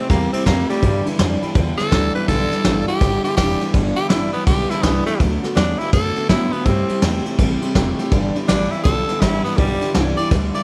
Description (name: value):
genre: rockabilly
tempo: 165 BPM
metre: 4/4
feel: swing 64% on 8ths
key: G major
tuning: A4 = 440 Hz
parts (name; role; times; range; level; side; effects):
- raspy tenor saxophone; melody; 0.0-10.6 s; G3 to D5; -25 LUFS; equal; none
- picked steel-string acoustic guitar; accompaniment; 0.0-10.6 s; G2 to G4; -28 LUFS; equal; none
- electric guitar through a small old amp; riff; 0.0-10.6 s; G2 to B3; -26 LUFS; equal; subtle chorus
- upright bass; bass; 0.1-10.6 s; E1 to A2; -26 LUFS; equal; none
- soft brush drum kit; drums; 0.1-10.6 s; kick drum, ride cymbal, snare drum; -22 LUFS; equal; none
room: light reverb, small room ambience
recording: none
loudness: -18 LUFS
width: mono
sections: 0.0-10.6 A section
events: none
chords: 0.0 C6; 0.8 G6; 5.2 D6; 6.7 C6; 8.1 G6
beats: 0.10 0.46 | 0.82 1.19 1.55 1.92 | 2.28 2.65 3.01 3.37 | 3.74 4.10 4.47 4.83 | 5.20 5.56 5.92 6.29 | 6.66 7.02 7.38 7.75 | 8.12 8.48 8.85 9.21 | 9.58 9.94 10.31